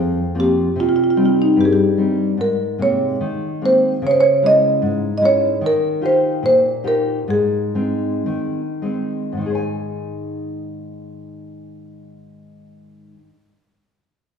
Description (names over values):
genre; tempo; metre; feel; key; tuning
fado; 46-76 BPM; 2/4; rubato; Ab major; A4 = 440 Hz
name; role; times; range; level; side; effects
marimba with soft mallets; melody; 0.0-8.2 s; Eb4 to Eb5; -16 LUFS; right 1 dB; none
nylon-string guitar; accompaniment; 0.0-13.4 s; F2 to Ab5; -21 LUFS; left 1 dB; none
room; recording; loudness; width
wet large studio reverb, RT60 1.2 s; band playing live in one room; -15 LUFS; side -6 dB against mid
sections
0.0-9.4 A section; 9.4-14.4 B section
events
slowing down 5.6-9.4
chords
0.0 Bbsus2/F; 0.8 Cm; 2.4 Abadd9; 4.0 Dbm; 5.6 Ebadd9; 7.3 Ab; 9.4 Ab5